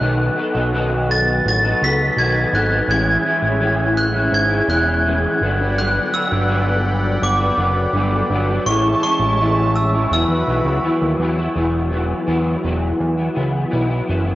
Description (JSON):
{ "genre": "indie pop", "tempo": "83 BPM", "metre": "4/4", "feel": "straight", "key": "E major", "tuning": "A4 = 438 Hz", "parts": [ { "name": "glockenspiel with brass mallets", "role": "melody", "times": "0.0-11.2 s", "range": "C#6 to B6", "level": "-20 LUFS", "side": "equal", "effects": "ensemble chorus, cassette tape, analog delay" }, { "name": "electric guitar through a small old amp", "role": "accompaniment", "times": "0.0-14.3 s", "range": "G2 to A4", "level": "-21 LUFS", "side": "left 1 dB", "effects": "ensemble chorus, warbly pitch drift, cassette tape" }, { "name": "warm analog pad", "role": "sustained chords", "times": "0.0-11.5 s", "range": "G#3 to B5", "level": "-26 LUFS", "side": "right 1 dB", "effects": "chorus, cassette tape" }, { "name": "fat analog bass", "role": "bass", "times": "0.0-14.3 s", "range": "E1 to E2", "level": "-20 LUFS", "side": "equal", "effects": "none" } ], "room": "light reverb", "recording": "home recording on cassette, nothing above 7.5 kHz", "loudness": "-15 LUFS", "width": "side -16 dB against mid", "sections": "0.0-11.6 A section; 11.6-14.3 B section", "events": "none", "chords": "0.0 B7; 2.9 Amaj7; 5.4 Gmaj7; 8.7 Amaj7; 10.1 Esus2" }